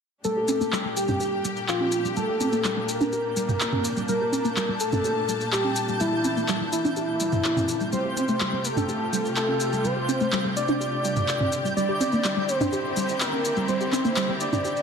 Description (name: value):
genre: progressive house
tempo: 125 BPM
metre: 4/4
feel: straight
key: G dorian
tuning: A4 = 440 Hz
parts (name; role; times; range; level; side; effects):
- wide unison lead; melody; 0.2-14.8 s; E4 to D5; -26 LUFS; equal; ping-pong delay
- rich studio string section; sustained chords; 0.2-14.8 s; Bb2 to A5; -31 LUFS; left 2 dB; none
- soft round pluck; arpeggios; 0.2-14.8 s; G3 to G4; -29 LUFS; right 1 dB; wide subtle chorus, tape echo
- maracas; percussion; 0.2-14.8 s; none; -34 LUFS; left 2 dB; none
- twinkling granular texture; texture; 0.7-14.8 s; G6; -38 LUFS; right 3 dB; built-in reverb
- electronic congas and toms; percussion; 0.5-14.6 s; none; -31 LUFS; right 3 dB; none
- electronic handclaps; drums; 0.7-14.3 s; none; -30 LUFS; left 1 dB; low-pass filter on snare, low-pass filter on room
room: moderate concert hall reverb, RT60 2.0 s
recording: none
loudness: -22 LUFS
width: side -6 dB against mid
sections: 0.2-14.8 A section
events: filter sweep on synth pluck 0.2-14.8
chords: 0.2 Gmadd9; 7.9 Fadd9; 11.8 Cadd9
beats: | 0.24 0.72 1.21 1.69 | 2.17 2.65 3.12 3.60 | 4.08 4.57 5.04 5.53 | 6.00 6.49 6.96 7.45 | 7.92 8.40 8.88 9.37 | 9.85 10.32 10.80 11.29 | 11.77 12.24 12.72 13.21 | 13.69 14.16 14.64